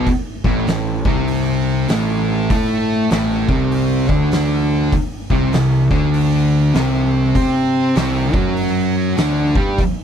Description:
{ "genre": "stoner and doom metal", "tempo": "99 BPM", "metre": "4/4", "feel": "swing 62% on 8ths", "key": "unclear", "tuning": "A4 = 441 Hz", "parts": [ { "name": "thick fuzz guitar", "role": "riff", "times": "0.0-9.8 s", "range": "A2 to C5", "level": "-20 LUFS", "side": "left 9 dB", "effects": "distortion" }, { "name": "thick fuzz guitar", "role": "riff", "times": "0.0-9.8 s", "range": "A2 to C5", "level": "-20 LUFS", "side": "right 10 dB", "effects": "distortion" }, { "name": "fuzz picked electric bass", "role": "bass", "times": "0.0-9.8 s", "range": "A1 to C3", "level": "-21 LUFS", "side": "equal", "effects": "overdrive" }, { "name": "oversized low-tuned drum kit", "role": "drums", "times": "0.1-10.0 s", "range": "hi-hat, kick drum, snare drum", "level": "-21 LUFS", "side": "equal", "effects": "none" } ], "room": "light reverb", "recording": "none", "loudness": "-14 LUFS", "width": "side -8 dB against mid", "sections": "0.0-10.0 A section", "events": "none", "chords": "0.1 Amadd11; 4.9 C5" }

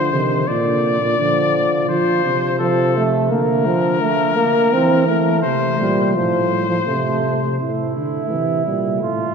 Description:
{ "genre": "classical, imitative canzona for brass ensemble", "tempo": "84 BPM", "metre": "4/4", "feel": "straight", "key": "Bb major", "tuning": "A4 = 439 Hz", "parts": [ { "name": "clear trumpet", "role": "melody", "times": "0.0-7.6 s", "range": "A4 to D5", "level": "-21 LUFS", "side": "left 5 dB", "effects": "none" }, { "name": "mellow trombone", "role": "accompaniment", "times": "0.0-9.3 s", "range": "D3 to C4", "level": "-19 LUFS", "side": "right 2 dB", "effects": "none" }, { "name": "mellow bass trombone", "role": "bass", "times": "0.0-9.3 s", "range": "A2 to F3", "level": "-21 LUFS", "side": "right 1 dB", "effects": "none" }, { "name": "warm flugelhorn", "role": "second line", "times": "7.6-9.3 s", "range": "E4 to F4", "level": "-23 LUFS", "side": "right 7 dB", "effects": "none" } ], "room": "wet church reverb, RT60 3.4 s", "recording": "minimal, uncompressed stereo recording", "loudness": "-15 LUFS", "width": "side -6 dB against mid", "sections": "0.0-7.6 A section; 7.6-9.3 B section", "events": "none", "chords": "0.5 Bb; 1.9 F; 3.3 Bb/D; 4.7 C/E; 6.2 F/A; 7.6 Am" }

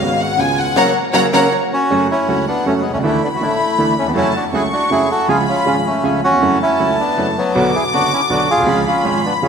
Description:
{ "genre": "tango", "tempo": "160 BPM", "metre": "3/4", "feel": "rubato", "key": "F# minor", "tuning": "A4 = 441 Hz", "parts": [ { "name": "warm studio violin section", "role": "second line", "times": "0.0-9.5 s", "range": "C#5 to D6", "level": "-19 LUFS", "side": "left 3 dB", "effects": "none" }, { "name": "clear grand piano", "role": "accompaniment", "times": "0.0-9.5 s", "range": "F#1 to F#4", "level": "-18 LUFS", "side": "right 2 dB", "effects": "none" }, { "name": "bandoneon", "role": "stabs", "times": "0.0-9.5 s", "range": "G#3 to G#4", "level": "-26 LUFS", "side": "right 2 dB", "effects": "none" }, { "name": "hollow-body jazz guitar", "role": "second line", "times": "1.1-1.9 s", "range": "A#4 to C#5", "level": "-27 LUFS", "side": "right 1 dB", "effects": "none" }, { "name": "bandoneon", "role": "melody", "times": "1.7-9.5 s", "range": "F#3 to A4", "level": "-16 LUFS", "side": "equal", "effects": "none" } ], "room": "wet concert hall reverb, RT60 1.8 s", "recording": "none", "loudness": "-13 LUFS", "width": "side -6 dB against mid", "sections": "0.0-1.9 A section; 1.9-9.5 B section", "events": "violin section solo 0.0-1.9; band accent 0.8-1.9", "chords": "0.4 C#7; 0.8 F#; 1.9 F#m; 3.0 Dsus2; 4.2 F#m7; 5.3 C#; 6.4 F#m7; 7.5 Bm; 8.7 C#" }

